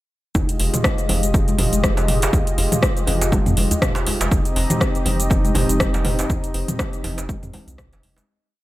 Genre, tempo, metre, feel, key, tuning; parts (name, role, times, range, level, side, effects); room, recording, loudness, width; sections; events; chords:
afro house; 121 BPM; 4/4; swing 57% on 16ths; F minor; A4 = 440 Hz
warm analog pad; sustained chords; 0.3-8.2 s; Ab3 to Eb5; -25 LUFS; equal; chorus, sidechain pumping
warm sub bass; bass; 0.3-8.2 s; F1 to F2; -23 LUFS; equal; sidechain pumping
electronic kick drum; drums; 0.3-7.9 s; -21 LUFS; equal; overdrive
house drum kit; drums; 0.4-8.3 s; hi-hat, rim click, shaker, toms; -23 LUFS; equal; overdrive
djembe; percussion; 0.4-8.3 s; -28 LUFS; right 2 dB
congas; percussion; 0.7-8.3 s; -27 LUFS; left 2 dB
little or no reverb; -17 LUFS; side -16 dB against mid
0.3-8.3 drop
drop 0.3-8.3; fade-out 5.6-8.3
0.3 Fm9; 4.3 Cm/F